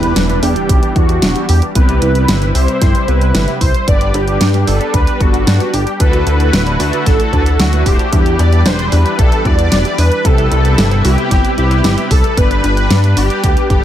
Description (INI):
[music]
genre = synthwave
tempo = 113 BPM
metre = 4/4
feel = straight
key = E minor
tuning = A4 = 440 Hz
[part]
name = wide unison lead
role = melody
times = 0.0-13.8 s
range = F#4 to D5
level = -18 LUFS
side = equal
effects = ensemble chorus, tape echo
[part]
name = lush unison pad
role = sustained chords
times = 0.0-13.8 s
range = C3 to B4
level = -22 LUFS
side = equal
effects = chorus, sidechain pumping
[part]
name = warbly dusty pluck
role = arpeggios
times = 0.0-13.8 s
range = D4 to G5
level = -25 LUFS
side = right 1 dB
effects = none
[part]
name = mellow synth brass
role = stabs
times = 0.0-13.8 s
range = G3 to C5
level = -22 LUFS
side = left 2 dB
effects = chorus, phaser
[part]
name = chorused synth bass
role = bass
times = 0.0-13.8 s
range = D1 to G2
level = -14 LUFS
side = equal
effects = tube saturation
[part]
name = pop drum kit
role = drums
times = 0.0-13.8 s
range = hi-hat, snare drum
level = -18 LUFS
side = equal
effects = gated reverb
[part]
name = impact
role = sound effects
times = 0.0-1.8 s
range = none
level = -26 LUFS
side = equal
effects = none
[part]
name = electronic kick drum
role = drums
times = 0.7-13.8 s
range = none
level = -13 LUFS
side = equal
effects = none
[sound]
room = digital ambience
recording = none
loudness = -10 LUFS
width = side -11 dB against mid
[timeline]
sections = 0.0-13.8 A section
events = impact 0.0-1.8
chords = 0.0 Em7; 1.8 Cmaj7; 3.9 G; 6.0 Dadd9; 8.1 Em7; 10.2 Cmaj7; 12.4 G